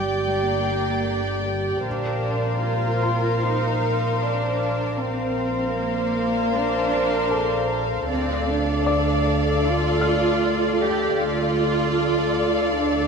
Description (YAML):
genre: cinematic, suspense film score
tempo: 77 BPM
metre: 4/4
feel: straight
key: unclear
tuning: A4 = 436 Hz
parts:
  - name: warm studio violin section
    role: melody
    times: 0.0-13.1 s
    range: F5 to G5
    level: -31 LUFS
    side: left 5 dB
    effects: none
  - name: warm studio violin section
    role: second line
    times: 0.0-13.1 s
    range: C5 to D5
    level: -28 LUFS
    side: equal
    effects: none
  - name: warm studio viola section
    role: accompaniment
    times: 0.0-13.1 s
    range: G4 to Bb4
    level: -28 LUFS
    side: left 1 dB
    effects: none
  - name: deep dark ambient pad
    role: sustained chords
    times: 0.0-13.1 s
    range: G4 to G5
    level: -29 LUFS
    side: left 1 dB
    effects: chorus, built-in reverb
  - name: rich studio double bass section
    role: bass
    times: 0.0-13.1 s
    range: G1 to D2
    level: -27 LUFS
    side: right 2 dB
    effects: none
  - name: warm studio cello section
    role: bass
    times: 0.0-13.1 s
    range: G3 to G4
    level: -25 LUFS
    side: right 2 dB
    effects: none
  - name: felt-muted upright piano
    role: texture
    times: 0.0-13.1 s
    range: A4 to F6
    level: -32 LUFS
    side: left 4 dB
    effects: none
  - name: rich studio violin section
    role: texture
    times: 0.0-1.4 s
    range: D6 to G6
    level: -40 LUFS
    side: left 2 dB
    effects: none
room: wet concert hall reverb, RT60 2.6 s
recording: dark, warm production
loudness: -20 LUFS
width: side -5 dB against mid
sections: 0.0-13.1 A section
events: none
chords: 0.0 Gm; 1.9 Bbadd9; 8.1 Dm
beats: 0.30 1.08 | 1.86 2.64 3.42 4.20 | 4.98 5.76 6.54 7.32 | 8.09 8.87 9.64 10.41 | 11.18 11.95 12.73